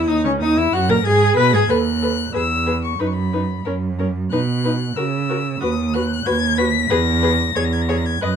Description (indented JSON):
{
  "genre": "quick classical-period movement for string quartet",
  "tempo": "92 BPM",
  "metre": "2/4",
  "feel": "straight",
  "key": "B major",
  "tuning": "A4 = 441 Hz",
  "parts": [
    { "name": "rich violin", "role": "melody", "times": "0.0-8.4 s", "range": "B5 to B6", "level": "-24 LUFS", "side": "left 8 dB", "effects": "none" },
    { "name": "rich violin", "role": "second line", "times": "0.0-8.3 s", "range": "C#4 to D#5", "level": "-22 LUFS", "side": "left 4 dB", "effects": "none" },
    { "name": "rich viola", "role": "accompaniment", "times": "0.0-8.3 s", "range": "C#4 to B4", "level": "-23 LUFS", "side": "equal", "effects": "none" },
    { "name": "rich cello", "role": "bass", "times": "0.0-8.4 s", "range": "C#2 to C#3", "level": "-20 LUFS", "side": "right 4 dB", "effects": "none" }
  ],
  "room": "light reverb",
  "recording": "dark, warm production",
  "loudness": "-16 LUFS",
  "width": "side -8 dB against mid",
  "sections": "0.0-8.4 A section",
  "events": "none",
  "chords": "0.4 B/D#; 1.7 B7/D# (rootless); 2.3 E; 3.0 B/F#; 3.7 F#5; 4.3 B; 5.0 F#7(no3)/C#; 5.6 B/D#; 6.9 E",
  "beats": "| 0.41 1.05 | 1.70 2.34 | 3.00 3.66 | 4.32 4.97 | 5.62 6.26 | 6.91 7.57 | 8.23"
}